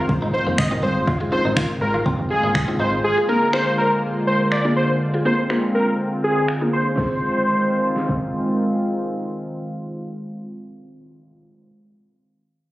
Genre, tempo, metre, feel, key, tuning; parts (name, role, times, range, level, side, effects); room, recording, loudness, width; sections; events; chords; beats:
dance-pop; 122 BPM; 4/4; straight; F dorian; A4 = 440 Hz
mallet-like synth pluck; accompaniment; 0.0-11.5 s; Bb3 to Bb4; -24 LUFS; equal; chorus, sidechain pumping
warm analog pad; sustained chords; 0.0-11.4 s; D3 to F4; -23 LUFS; equal; chorus, sidechain pumping
clean electric guitar; riff; 0.0-2.9 s; Bb3 to F4; -28 LUFS; right 1 dB; lush chorus
slap-like FM bass; bass; 0.0-3.0 s; F1 to Ab1; -25 LUFS; equal; sidechain pumping
smooth R&B drum kit; drums; 0.1-8.2 s; crash cymbal, finger snaps, kick drum, snare drum; -23 LUFS; equal
wide unison lead; melody; 0.3-8.4 s; Ab4 to Eb5; -22 LUFS; equal; sidechain pumping, digital delay
moderate plate reverb, RT60 1.0 s; recorded on a phone in the room, studio reverb, low-pass filter; -18 LUFS; side -17 dB against mid
0.0-7.0 A section; 7.0-10.9 B section
0.0 Fm7; 3.0 Bb7; 7.0 Fm7
0.09 0.58 | 1.07 1.57 2.06 2.55 | 3.04 3.53 4.03 4.52 | 5.01 5.50 5.99 6.48 | 6.98 7.47 7.96 8.45 | 8.94 9.44 9.93 10.42